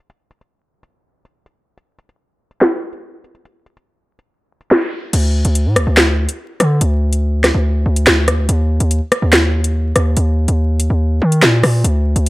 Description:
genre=hip hop, drill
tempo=143 BPM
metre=4/4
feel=half-time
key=unclear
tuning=A4 = 441 Hz
part: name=drill drum kit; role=drums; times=0.1-12.3 s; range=crash cymbal, handclaps, hi-hat, rim click, snare drum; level=-14 LUFS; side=equal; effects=none
part: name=distorted 808-style bass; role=bass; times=5.1-12.3 s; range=D2 to Eb3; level=-14 LUFS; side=equal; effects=distortion
room=light reverb, digital ambience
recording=vinyl crackle, low-pass filter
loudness=-13 LUFS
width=side -19 dB against mid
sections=0.0-5.1 A section; 5.1-12.3 B section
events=none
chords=none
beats=| 0.10 0.52 0.94 1.36 | 1.77 2.19 2.62 3.03 | 3.45 3.87 4.29 4.71 | 5.13 5.55 5.97 6.39 | 6.81 7.23 7.65 8.07 | 8.49 8.91 9.33 9.75 | 10.17 10.59 11.01 11.43 | 11.85 12.27

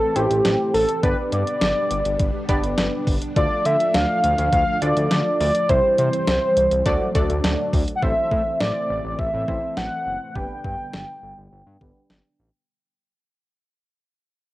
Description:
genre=synth-pop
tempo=103 BPM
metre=4/4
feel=straight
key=G major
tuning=A4 = 443 Hz
part: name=warm velvety synth lead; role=melody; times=0.0-12.4 s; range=G4 to G5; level=-21 LUFS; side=equal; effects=chorus, low-pass filter, analog delay
part: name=string machine, cellos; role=sustained chords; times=0.0-12.7 s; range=D3 to D4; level=-30 LUFS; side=equal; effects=ensemble chorus, low-pass filter, cassette tape
part: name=funky polysynth comp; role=accompaniment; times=0.2-12.5 s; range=G3 to D5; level=-27 LUFS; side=equal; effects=chorus, low-pass filter, cassette tape
part: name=smooth synth bass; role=bass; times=0.2-12.5 s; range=F#1 to D3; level=-25 LUFS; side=equal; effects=tube saturation
part: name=detuned 8-bit digital drum machine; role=drums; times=0.2-12.2 s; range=hi-hat, kick drum, snare drum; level=-24 LUFS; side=equal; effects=none
room=moderate studio reverb, RT60 0.7 s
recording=home recording on cassette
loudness=-18 LUFS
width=side -17 dB against mid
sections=0.0-8.0 A section; 8.0-12.7 B section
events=fade-out 8.0-12.7; filter sweep 8.0-12.7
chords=0.0 Am; 1.0 G; 3.4 Dm; 5.7 C; 6.9 D; 8.0 Am; 10.4 G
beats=0.45 | 1.03 1.62 2.20 2.78 | 3.36 3.95 4.53 5.11 | 5.69 6.28 6.86 7.44 | 8.02 8.61 9.19 9.77 | 10.35 10.94 11.52 12.10

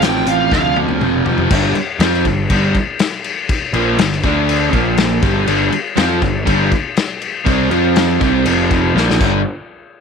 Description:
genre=blues rock power trio and southern rock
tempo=121 BPM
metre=4/4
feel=straight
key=G minor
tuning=A4 = 440 Hz
part: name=fuzz lead guitar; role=melody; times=0.0-0.8 s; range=F5 to G5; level=-18 LUFS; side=right 5 dB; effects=wah, distortion
part: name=overdriven semi-hollow guitar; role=riff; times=0.0-9.4 s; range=F2 to F4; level=-16 LUFS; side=right 1 dB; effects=none
part: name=fuzz picked electric bass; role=bass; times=0.0-9.4 s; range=F1 to F2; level=-19 LUFS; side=equal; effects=overdrive
part: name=vintage drum kit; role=drums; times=0.0-9.3 s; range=crash cymbal, hi-hat, kick drum, snare drum, toms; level=-17 LUFS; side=left 3 dB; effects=none
room=light reverb, small room ambience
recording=1960s-style stereo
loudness=-13 LUFS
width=side -6 dB against mid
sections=0.0-1.5 A section; 1.5-9.4 B section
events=drum fill 0.5-1.5, 9.0-9.4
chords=0.0 F; 1.5 Gm; 4.2 D5; 4.7 Bb5; 5.2 G5; 7.7 F5; 8.2 C5; 8.5 F5; 9.0 Bb5; 9.2 G5; 9.4 N.C.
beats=0.02 0.52 1.01 | 1.51 2.01 2.50 3.00 | 3.49 3.99 4.49 4.98 | 5.48 5.97 6.47 6.96 | 7.46 7.96 8.46 8.95

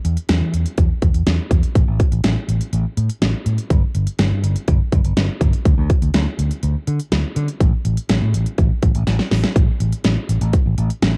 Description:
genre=synth-pop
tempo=123 BPM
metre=4/4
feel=straight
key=unclear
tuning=A4 = 440 Hz
part: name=fingered electric bass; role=bass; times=0.0-11.1 s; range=G1 to E3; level=-21 LUFS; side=equal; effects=none
part: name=pop drum kit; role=drums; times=0.0-11.1 s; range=hi-hat, kick drum, snare drum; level=-20 LUFS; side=equal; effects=cassette tape
room=light reverb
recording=home recording on cassette, faint mains hum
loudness=-18 LUFS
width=mono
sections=0.0-9.6 A section; 9.6-11.2 B section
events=drum fill 9.1-9.6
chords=none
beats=0.29 0.78 1.26 | 1.75 2.24 2.73 3.22 | 3.70 4.19 4.68 5.17 | 5.66 6.14 6.63 7.12 | 7.61 8.09 8.58 9.07 | 9.56 10.05 10.53 11.02

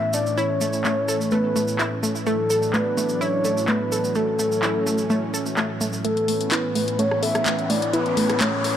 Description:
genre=progressive house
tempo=127 BPM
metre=4/4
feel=straight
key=A major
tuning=A4 = 440 Hz
part: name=soft octave-layered synth lead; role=melody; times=0.0-8.8 s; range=A4 to E5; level=-24 LUFS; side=left 1 dB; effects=chorus, tape echo
part: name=lush unison pad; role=sustained chords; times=0.0-8.8 s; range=A2 to D4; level=-27 LUFS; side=equal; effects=chorus
part: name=wide unison pluck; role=arpeggios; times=0.1-8.7 s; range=A3 to A4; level=-26 LUFS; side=right 1 dB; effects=tape echo
part: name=tube shaker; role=percussion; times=0.1-6.0 s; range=none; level=-32 LUFS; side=right 3 dB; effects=none
part: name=house drum kit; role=drums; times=0.8-8.7 s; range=handclaps, hi-hat, rim click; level=-29 LUFS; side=left 1 dB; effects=overdrive, low-pass filter on snare, studio reverb, low-pass filter on hats
part: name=riser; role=sound effects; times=6.8-8.8 s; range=none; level=-31 LUFS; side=equal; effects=none
room=light reverb, digital ambience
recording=dark, warm production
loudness=-20 LUFS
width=side -10 dB against mid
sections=0.0-6.0 A section; 6.0-8.8 B section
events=filter sweep on analog synth pad 0.0-6.0; build-up 6.0-8.8; riser 6.8-8.8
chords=0.0 Aadd9; 2.3 Dadd9/A; 6.0 Aadd9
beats=| 0.38 0.85 1.32 1.79 | 2.27 2.74 3.21 3.68 | 4.16 4.63 5.10 5.57 | 6.04 6.52 6.99 7.46 | 7.93 8.41

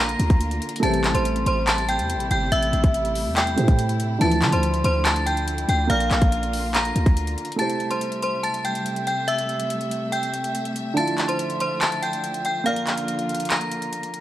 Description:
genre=hip hop, trap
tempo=142 BPM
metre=4/4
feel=half-time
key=A phrygian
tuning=A4 = 440 Hz
part: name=metallic FM bell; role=melody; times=0.0-14.2 s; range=C5 to Bb6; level=-24 LUFS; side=equal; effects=chorus, tape echo
part: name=dark grand piano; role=accompaniment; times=0.0-14.2 s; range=D3 to F5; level=-29 LUFS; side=right 4 dB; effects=none
part: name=bright studio string section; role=sustained chords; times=0.0-14.2 s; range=C3 to E5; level=-30 LUFS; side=equal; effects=none
part: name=hard-hitting 808-style bass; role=bass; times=0.0-7.4 s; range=G1 to D3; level=-24 LUFS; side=equal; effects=none
part: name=trap drum kit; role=drums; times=0.1-14.2 s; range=handclaps, hi-hat, kick drum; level=-24 LUFS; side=equal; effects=none
part: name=mellow brass ensemble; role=stabs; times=0.8-1.1, 4.2-4.5 s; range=A1 to E3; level=-30 LUFS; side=left 6 dB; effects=tape echo
room=light reverb, studio reverb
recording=dark, warm production, vinyl crackle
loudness=-20 LUFS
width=side -13 dB against mid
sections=0.0-7.6 A section; 7.6-14.2 B section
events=none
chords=0.0 Bb; 0.8 Am7; 4.2 Dmadd9; 5.9 Bb; 7.6 Am7; 11.0 Dmadd9; 12.7 Bb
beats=0.41 | 0.83 1.25 1.67 2.10 | 2.52 2.94 3.36 3.79 | 4.21 4.63 5.05 5.48 | 5.90 6.32 6.74 7.17 | 7.59 8.01 8.43 8.86 | 9.28 9.70 10.12 10.55 | 10.97 11.39 11.81 12.24 | 12.66 13.08 13.51 13.93

